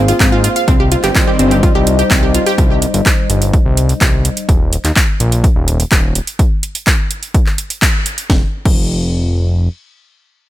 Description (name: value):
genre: melodic techno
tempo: 126 BPM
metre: 4/4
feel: straight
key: unclear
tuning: A4 = 438 Hz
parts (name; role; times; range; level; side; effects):
- dark analog pad; sustained chords; 0.0-4.5 s; G3 to F5; -19 LUFS; left 2 dB; chorus, sidechain pumping
- fat analog bass; bass; 0.0-9.7 s; Eb1 to Ab2; -15 LUFS; equal; sidechain pumping
- wide unison pluck; arpeggios; 0.1-2.5 s; C4 to F5; -16 LUFS; right 1 dB; sidechain pumping, digital delay
- techno drum kit; drums; 0.1-8.8 s; crash cymbal, handclaps, hi-hat, snare drum; -18 LUFS; right 1 dB; none
- electronic kick drum; drums; 0.2-8.8 s; none; -13 LUFS; equal; none
- brassy analog pad; stabs; 1.0-1.5 s; Eb3 to C4; -19 LUFS; right 1 dB; chorus, sidechain pumping, digital delay
room: light reverb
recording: none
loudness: -11 LUFS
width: side -14 dB against mid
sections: 0.0-8.3 A section; 8.3-10.5 B section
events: drop 0.0-8.3; band accent 7.8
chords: 0.0 Abadd9; 0.7 Cm; 4.5 Eb5; 8.3 N.C.